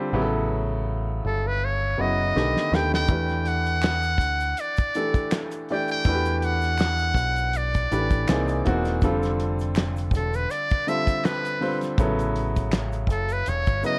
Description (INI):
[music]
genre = R&B, neo-soul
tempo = 81 BPM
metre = 4/4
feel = swing 55% on 16ths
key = unclear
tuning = A4 = 440 Hz
[part]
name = clear concert grand piano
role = accompaniment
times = 0.0-14.0 s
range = C#3 to D5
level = -30 LUFS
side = equal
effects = none
[part]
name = deep dub picked electric bass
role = bass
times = 0.1-13.8 s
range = E1 to E2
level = -29 LUFS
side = equal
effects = none
[part]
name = trumpet with metal mute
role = melody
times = 1.3-14.0 s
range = A4 to G5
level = -29 LUFS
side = equal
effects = none
[part]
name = damped 70s drum kit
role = drums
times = 2.4-14.0 s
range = handclaps, hi-hat, kick drum, snare drum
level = -27 LUFS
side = equal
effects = none
[part]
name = egg shaker and finger snaps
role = percussion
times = 3.1-14.0 s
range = none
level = -45 LUFS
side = equal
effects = none
[sound]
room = light reverb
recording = worn, warbling old tape, cassette tape, warbly pitch drift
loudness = -24 LUFS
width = mono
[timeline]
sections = 0.0-14.0 A section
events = drum fill 2.3-3.1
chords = 0.1 A13; 2.3 B7alt; 3.1 Em11; 8.3 C7alt; 9.0 Fadd9; 12.0 A69